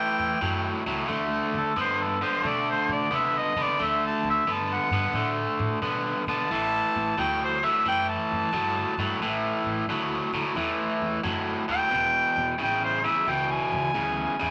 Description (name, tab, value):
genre	electric blues shuffle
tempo	89 BPM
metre	4/4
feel	swing 67% on 8ths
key	A mixolydian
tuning	A4 = 439 Hz
part	mellow harmonica	melody	0.0-14.5 s	A4 to A5	-28 LUFS	equal	overdrive
part	overdriven electric guitar	riff	0.0-14.5 s	E2 to B3	-29 LUFS	equal	spring reverb
part	upright bass	bass	0.0-14.5 s	E1 to C3	-38 LUFS	equal	none
room	moderate club reverb, RT60 0.5 s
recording	none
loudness	-26 LUFS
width	mono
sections	0.0-14.5 A section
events	harmonica solo 0.0-14.5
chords	0.0 A7; 1.1 D5; 6.5 A5; 11.9 E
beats	0.41 | 1.09 1.76 2.44 3.12 | 3.79 4.47 5.15 5.82 | 6.50 7.17 7.85 8.53 | 9.20 9.88 10.56 11.23 | 11.91 12.59 13.26 13.94